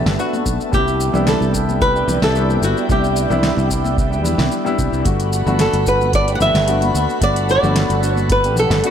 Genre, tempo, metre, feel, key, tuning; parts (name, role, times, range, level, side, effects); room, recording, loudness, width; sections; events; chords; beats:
sunset chillout; 111 BPM; 4/4; swing 53% on 16ths; G major; A4 = 440 Hz
warm baby grand piano; accompaniment; 0.0-8.9 s; G3 to G4; -22 LUFS; moving between left 5 dB and right 3 dB; auto-pan, tape echo
airy breathy pad; sustained chords; 0.0-8.9 s; G3 to B5; -24 LUFS; right 2 dB; chorus, phaser
sustaining fretless electric bass; bass; 0.0-8.8 s; G1 to E2; -19 LUFS; equal
smooth R&B drum kit; drums; 0.1-8.9 s; hi-hat, shaker, snare drum; -24 LUFS; equal
flamenco guitar; melody; 0.2-8.9 s; F#4 to F#5; -19 LUFS; equal; ping-pong delay
congas; percussion; 0.3-8.7 s; -28 LUFS; left 3 dB
electronic kick drum; drums; 0.5-8.4 s; -21 LUFS; equal; overdrive
light reverb; -14 LUFS; side -8 dB against mid
0.0-8.9 A section
0.0 Gmaj9; 0.7 Cmaj9; 5.1 Gmaj9
0.19 | 0.73 1.27 1.81 2.35 | 2.89 3.43 3.97 4.51 | 5.05 5.59 6.13 6.67 | 7.21 7.75 8.30 8.84